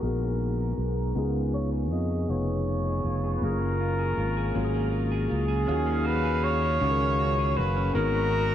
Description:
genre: slow six-eight R&B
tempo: 53 BPM (dotted quarters)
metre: 6/8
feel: straight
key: Eb minor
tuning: A4 = 440 Hz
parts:
  - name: clear flugelhorn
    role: melody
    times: 0.0-8.5 s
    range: Ab4 to Eb5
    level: -30 LUFS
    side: equal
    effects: diffuse ambient delay
  - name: clean electric guitar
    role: second line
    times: 0.0-8.5 s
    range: Db3 to Bb4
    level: -35 LUFS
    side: right 4 dB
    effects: spring reverb
  - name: tine electric piano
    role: accompaniment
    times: 0.0-8.5 s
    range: Bb3 to F5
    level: -31 LUFS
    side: left 5 dB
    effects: analog chorus
  - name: fretless electric bass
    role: bass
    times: 0.0-8.5 s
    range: F1 to F2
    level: -27 LUFS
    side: equal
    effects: none
  - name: clear horn section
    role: stabs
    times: 5.7-8.5 s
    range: Bb2 to F5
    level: -35 LUFS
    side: right 4 dB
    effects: diffuse ambient delay
room: moderate huge ambient reverb, RT60 8.0 s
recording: dreamy mix soaked in reverb, low-pass filter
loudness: -24 LUFS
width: side -10 dB against mid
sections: 0.0-5.7 A section; 5.7-8.5 B section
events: filter sweep 0.0-5.7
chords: 0.0 Abm9; 1.1 Db7; 3.4 Gbmaj9; 5.7 Ebm11; 7.9 Abm9

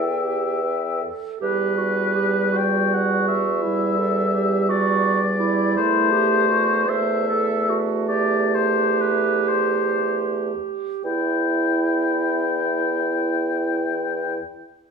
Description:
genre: classical, slow romantic movement for wind quintet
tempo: 36-57 BPM (dotted quarters)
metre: 12/8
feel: rubato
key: E minor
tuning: A4 = 440 Hz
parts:
  - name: mellow hollow silver concert flute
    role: melody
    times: 0.0-1.0 s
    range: G5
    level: -31 LUFS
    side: left 9 dB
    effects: none
  - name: warm oboe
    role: second line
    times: 0.0-14.4 s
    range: B4 to G5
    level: -23 LUFS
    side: left 6 dB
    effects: none
  - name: clear clarinet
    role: accompaniment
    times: 0.0-14.4 s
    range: E4 to C5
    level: -24 LUFS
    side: right 8 dB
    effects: none
  - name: mellow French horn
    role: accompaniment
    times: 0.0-14.4 s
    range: G3 to E4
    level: -26 LUFS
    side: equal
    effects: none
  - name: mellow bassoon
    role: bass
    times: 0.0-14.4 s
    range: E2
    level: -25 LUFS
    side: equal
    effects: none
room: wet recital hall reverb, RT60 1.3 s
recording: minimal, uncompressed stereo recording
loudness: -19 LUFS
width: side -5 dB against mid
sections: 0.0-1.4 A section; 1.4-11.0 B section; 11.0-14.9 C section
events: slowing down 2.9-11.0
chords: 0.0 Em; 5.8 Am/E; 11.0 Em

